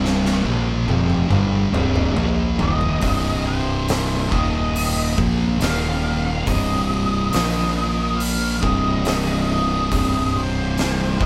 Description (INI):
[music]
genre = stoner and doom metal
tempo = 70 BPM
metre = 4/4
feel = straight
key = C minor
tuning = A4 = 440 Hz
[part]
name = thick fuzz guitar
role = riff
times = 0.0-11.3 s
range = C2 to Bb3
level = -28 LUFS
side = equal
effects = distortion
[part]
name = thick fuzz guitar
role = riff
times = 0.0-11.3 s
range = C2 to Bb3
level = -26 LUFS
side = equal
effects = distortion
[part]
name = fuzz fingered electric bass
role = bass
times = 0.0-11.3 s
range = C1 to Bb1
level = -27 LUFS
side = equal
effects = overdrive
[part]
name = oversized low-tuned drum kit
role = drums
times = 0.0-11.3 s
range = hi-hat, kick drum, snare drum, toms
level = -26 LUFS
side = equal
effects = none
[part]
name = octave-fuzz lead guitar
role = melody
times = 2.6-11.3 s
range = C5 to F5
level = -28 LUFS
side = equal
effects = wah, distortion
[sound]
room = light reverb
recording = band playing live in one room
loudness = -20 LUFS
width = mono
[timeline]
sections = 0.0-3.0 A section; 3.0-11.3 B section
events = drum fill 0.0-3.0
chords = 0.0 Cm; 3.0 C5; 4.3 Eb5; 5.2 Bb5; 5.6 Eb5; 6.5 Cm; 7.3 Bb5; 8.6 Cm